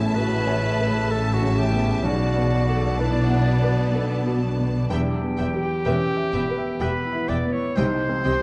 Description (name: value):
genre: cinematic, emotional film score for orchestra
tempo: 63 BPM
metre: 3/4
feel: rubato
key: E dorian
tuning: A4 = 440 Hz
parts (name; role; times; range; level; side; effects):
- rich studio violin section; melody; 0.0-8.3 s; G5 to A5; -38 LUFS; equal; none
- bright clarinet; second line; 0.0-8.4 s; D4 to D5; -31 LUFS; equal; none
- bright concert flute; second line; 0.0-8.4 s; D5 to D6; -36 LUFS; equal; none
- warm symphonic violin section; second line; 0.0-8.3 s; D5 to E5; -36 LUFS; equal; none
- felt-muted upright piano; accompaniment; 0.0-8.4 s; A1 to F#5; -31 LUFS; equal; none
- warm symphonic viola section; accompaniment; 0.0-8.3 s; C#3 to C4; -36 LUFS; equal; none
- clear French horn section; sustained chords; 0.0-8.4 s; B3 to D5; -33 LUFS; equal; none
- concert harp; arpeggios; 0.0-8.4 s; A2 to B5; -35 LUFS; equal; none
- rich symphonic cello section; bass; 0.0-8.3 s; E2 to C3; -31 LUFS; equal; none
- warm symphonic double bass section; bass; 0.0-8.3 s; E1 to C2; -28 LUFS; equal; none
room: moderate scoring stage reverb, RT60 1.6 s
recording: dark, warm production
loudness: -22 LUFS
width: mono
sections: 0.0-8.4 A section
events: none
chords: 0.0 Aadd9; 2.0 Bm7; 4.9 Em; 7.8 Cm